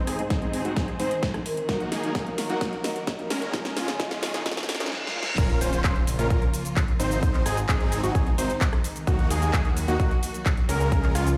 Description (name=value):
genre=EDM, festival progressive house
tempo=130 BPM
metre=4/4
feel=straight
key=unclear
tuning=A4 = 440 Hz
part: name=dark baby grand piano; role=accompaniment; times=0.0-5.2 s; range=Ab2 to C5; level=-37 LUFS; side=equal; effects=sidechain pumping, tape echo
part: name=warm studio string section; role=sustained chords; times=0.0-11.4 s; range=C3 to C5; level=-39 LUFS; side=equal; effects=sidechain pumping, low-pass filter
part: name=big supersaw lead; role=riff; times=0.0-11.3 s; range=Ab3 to C5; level=-34 LUFS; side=equal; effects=sidechain pumping, low-pass filter, tape echo
part: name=riser, reverse cymbal and impact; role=sound effects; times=3.0-7.2 s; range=none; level=-39 LUFS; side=equal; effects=none
part: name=big-room dance drum kit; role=drums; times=0.1-11.4 s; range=crash cymbal, handclaps, hi-hat, rim click, shaker, snare drum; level=-34 LUFS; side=equal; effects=none
part: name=vibraphone with soft mallets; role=melody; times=0.2-4.4 s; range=Bb4 to Eb5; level=-37 LUFS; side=equal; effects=tape echo
part: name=electronic kick drum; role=drums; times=0.3-11.0 s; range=none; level=-27 LUFS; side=equal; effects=none
part: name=unison lead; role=arpeggios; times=5.4-11.3 s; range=F4 to C5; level=-34 LUFS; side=equal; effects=sidechain pumping, tape echo
part: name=fat analog bass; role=bass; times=5.4-11.4 s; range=Ab1 to Eb2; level=-30 LUFS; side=equal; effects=sidechain pumping
room=light reverb, digital ambience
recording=played on a big sound system in a bare room, stone room reverb, high-pass filter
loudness=-25 LUFS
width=mono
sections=0.0-5.4 A section; 5.4-11.4 B section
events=build-up 0.0-5.4; drum fill 0.0-4.9, 4.9-5.4; filter sweep on supersaw synth 0.0-5.4; filter sweep 0.0-5.4; reverse cymbal 4.5-5.4; drop 5.4-11.4; impact 5.4-7.2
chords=0.0 Ab; 1.7 Ebm; 3.5 Db; 5.4 Bbm; 7.2 Ab; 9.1 Ebm